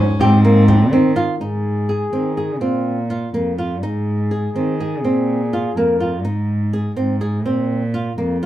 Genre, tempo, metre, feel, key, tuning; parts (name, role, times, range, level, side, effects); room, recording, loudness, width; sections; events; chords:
contemporary instrumental, chamber music in an uneven meter; 248 BPM (eighths); 5/8; straight; Ab major; A4 = 440 Hz
warm viola; second line; 0.0-1.2 s; C4 to Db4; -22 LUFS; left 1 dB
flamenco guitar; arpeggios; 0.0-8.5 s; Bb3 to Ab4; -20 LUFS; equal
dark cello; bass; 0.2-8.5 s; F2 to Eb3; -18 LUFS; right 1 dB
frame drum; percussion; 0.2-0.9 s; -24 LUFS; left 3 dB
mellow flugelhorn; melody; 1.4-6.1 s; F4 to Bb4; -25 LUFS; left 3 dB
wet small room reverb, RT60 0.6 s; heard from further back in the room; -16 LUFS; side -13 dB against mid
0.0-1.4 A section; 1.4-8.5 B section
0.2 Abmaj9; 1.4 Ab; 2.6 Bbsus2; 3.8 Ab; 5.0 Bbsus2; 6.2 Ab; 7.5 Bbsus2